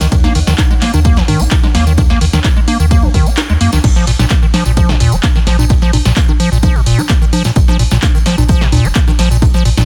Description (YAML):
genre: acid house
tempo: 129 BPM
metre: 4/4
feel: straight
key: Bb minor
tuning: A4 = 440 Hz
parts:
  - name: warm analog pad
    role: sustained chords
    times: 0.0-3.8 s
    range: Eb4 to Gb5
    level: -33 LUFS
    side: equal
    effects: none
  - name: acid bass, square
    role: riff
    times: 0.0-9.8 s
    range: Bb2 to Eb4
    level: -17 LUFS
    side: equal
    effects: none
  - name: warm sub bass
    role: bass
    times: 0.0-9.8 s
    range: F1 to Ab2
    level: -16 LUFS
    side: equal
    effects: tube saturation, sidechain pumping
  - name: punchy analog drum machine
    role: drums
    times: 0.0-9.8 s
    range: congas, crash cymbal, handclaps, hi-hat, ride cymbal, snare drum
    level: -20 LUFS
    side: equal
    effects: none
  - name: tambourine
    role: percussion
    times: 0.0-9.8 s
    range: none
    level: -31 LUFS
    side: equal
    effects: none
  - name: electronic kick drum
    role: drums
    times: 0.1-9.5 s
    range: none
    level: -14 LUFS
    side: equal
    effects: none
room: little or no reverb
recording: dense, heavily limited modern master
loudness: -11 LUFS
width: mono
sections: 0.0-3.8 A section; 3.8-9.8 A section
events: drop 0.0-3.8, 3.8-9.8; kick drops out 3.4-3.8; band accent 3.4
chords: 0.0 Ebm7; 3.8 Bb5